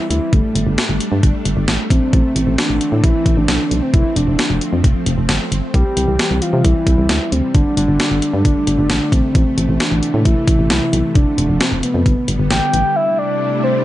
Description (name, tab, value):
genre	synth-pop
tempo	133 BPM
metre	4/4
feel	straight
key	C major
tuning	A4 = 440 Hz
part	soft octave-layered synth lead	melody	0.0-13.8 s	A3 to G5	-18 LUFS	equal	chorus, tape echo
part	string machine, violas	sustained chords	0.0-13.8 s	C3 to E4	-23 LUFS	equal	ensemble chorus
part	solid FM bass	bass	0.1-12.8 s	F1 to C3	-18 LUFS	equal	none
part	clean 12-bit digital drum machine	drums	0.1-12.8 s	hi-hat, kick drum, snare drum	-17 LUFS	equal	none
room	digital ambience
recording	nothing above 10.3 kHz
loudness	-13 LUFS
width	side -14 dB against mid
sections	0.0-13.0 A section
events	none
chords	0.3 Gsus2; 2.1 Am; 3.9 F; 5.7 C; 7.5 Gsus2; 9.3 Am; 11.2 F; 12.1 G; 13.0 C6